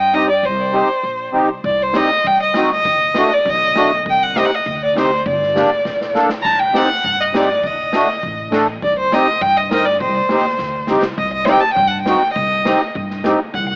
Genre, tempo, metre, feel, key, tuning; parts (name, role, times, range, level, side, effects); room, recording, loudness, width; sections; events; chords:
klezmer; 101 BPM; 2/4; straight; C dorian sharp4; A4 = 440 Hz
clear violin; melody; 0.0-13.8 s; C5 to Bb5; -16 LUFS; equal; cassette tape, tape echo
upright bass; bass; 0.0-13.8 s; G1 to G2; -28 LUFS; equal
accordion; accompaniment; 0.1-13.4 s; A3 to Bb4; -15 LUFS; equal; light tremolo tuning, cassette tape
street-band drum kit; drums; 1.6-13.7 s; crash cymbal, kick drum, snare drum; -25 LUFS; equal; cassette tape
light reverb; home recording on cassette, AM radio sound; -13 LUFS; side -35 dB against mid
0.0-1.6 A section; 1.6-11.2 A section; 11.2-13.8 B section
speeding up 0.0-13.8; drum fill 5.9-6.4, 10.6-11.2
0.0 Cm; 2.9 D; 4.1 Cm; 5.3 Gm; 6.4 Cm; 7.6 D5; 8.8 Cm